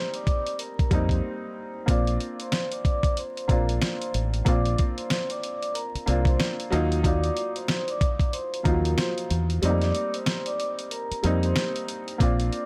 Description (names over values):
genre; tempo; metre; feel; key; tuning
hip hop, boom-bap hip-hop; 93 BPM; 4/4; swing 60% on 16ths; Bb major; A4 = 440 Hz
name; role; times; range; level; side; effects
vibraphone with soft mallets; melody; 0.0-12.7 s; Bb4 to D6; -34 LUFS; equal; high-pass filter, low-pass filter
warm upright piano; accompaniment; 0.0-12.7 s; F3 to F4; -32 LUFS; equal; high-pass filter, low-pass filter
dusty soul sampler-style drum kit; drums; 0.1-12.7 s; hi-hat, kick drum, snare drum; -28 LUFS; equal; vintage 12-bit sampler grit
deep dub fingered electric bass; bass; 0.8-12.5 s; A1 to F2; -27 LUFS; equal; none
room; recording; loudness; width
small room ambience; vinyl crackle; -26 LUFS; mono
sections
0.0-1.9 A section; 1.9-12.7 B section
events
break 1.2-1.9; kick muted 9.6-12.2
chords
0.0 F7sus4; 1.9 Bbadd9; 6.7 Ebmadd9; 9.6 F7sus4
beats
0.59 1.24 | 1.88 2.52 3.17 3.81 | 4.46 5.11 5.75 6.40 | 7.04 7.69 8.33 8.98 | 9.62 10.27 10.91 11.56 | 12.20